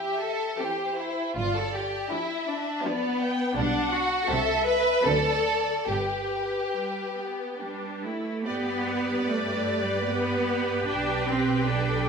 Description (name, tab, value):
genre	classical, slow romantic movement for string orchestra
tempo	69-84 BPM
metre	3/4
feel	rubato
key	G major from 3.6 s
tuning	A4 = 440 Hz
part	dark symphonic violin section	melody	0.0-12.1 s	G4 to G5	-32 LUFS	left 3 dB	none
part	warm symphonic violin section	second line	0.0-12.1 s	B3 to G5	-27 LUFS	left 1 dB	none
part	clear symphonic viola section	accompaniment	0.0-12.1 s	E3 to B4	-33 LUFS	right 1 dB	none
part	rich symphonic cello section	bass	1.4-12.1 s	G2 to D4	-30 LUFS	right 2 dB	none
part	warm symphonic double bass section	bass	1.4-12.1 s	G1 to G2	-33 LUFS	right 5 dB	none
room	wet recital hall reverb, RT60 1.3 s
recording	minimal, uncompressed stereo recording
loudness	-24 LUFS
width	side -5 dB against mid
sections	0.0-8.5 A section; 8.5-12.1 B section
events	none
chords	0.0 C; 1.4 G7; 3.6 G/B; 4.3 Am7/C; 5.1 D7; 5.9 G; 10.9 G/B